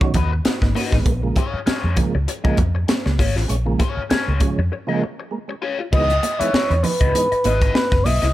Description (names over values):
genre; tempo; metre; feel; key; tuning
funk; 98 BPM; 4/4; swing 56% on 16ths; unclear; A4 = 441 Hz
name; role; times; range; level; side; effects
percussive tonewheel organ; stabs; 0.0-7.5 s; B2 to F#4; -26 LUFS; right 4 dB; chorus vibrato, fast rotary speaker
vintage muted fingered electric bass; bass; 0.0-8.3 s; F#1 to E#2; -21 LUFS; equal; none
crisp fusion drum kit; drums; 0.0-8.3 s; crash cymbal, hi-hat, kick drum, snare drum; -21 LUFS; equal; none
congas; percussion; 0.1-8.2 s; none; -29 LUFS; right 5 dB; none
raw garage guitar; accompaniment; 0.2-8.3 s; D#4 to E5; -26 LUFS; left 5 dB; wah, overdrive, phaser
expressive portamento lead; melody; 5.9-8.3 s; B4 to D#5; -20 LUFS; equal; chorus
room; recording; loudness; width
small room ambience; none; -17 LUFS; side -15 dB against mid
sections
0.0-5.9 A section; 5.9-8.3 B section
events
break 4.7-5.9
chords
0.0 G#m7; 1.1 A#m7; 5.9 C#m9